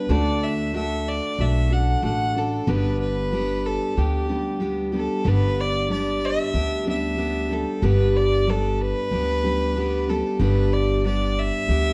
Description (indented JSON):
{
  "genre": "honky-tonk and classic country",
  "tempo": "93 BPM",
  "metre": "4/4",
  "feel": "straight",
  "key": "G major",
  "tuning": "A4 = 438 Hz",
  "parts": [
    { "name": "rich fiddle", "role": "melody", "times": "0.0-11.9 s", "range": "G4 to F#5", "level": "-29 LUFS", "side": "equal", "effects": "none" },
    { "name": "picked steel-string acoustic guitar", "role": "accompaniment", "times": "0.0-11.9 s", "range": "G2 to A4", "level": "-27 LUFS", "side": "equal", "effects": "none" },
    { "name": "upright bass", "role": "bass", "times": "0.1-11.9 s", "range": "G1 to D2", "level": "-27 LUFS", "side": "equal", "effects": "none" }
  ],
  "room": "moderate large studio reverb, RT60 1.3 s",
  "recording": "dark, warm production",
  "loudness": "-23 LUFS",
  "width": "mono",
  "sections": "0.0-5.3 A section; 5.3-11.9 A section",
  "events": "none",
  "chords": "0.1 D; 2.7 G"
}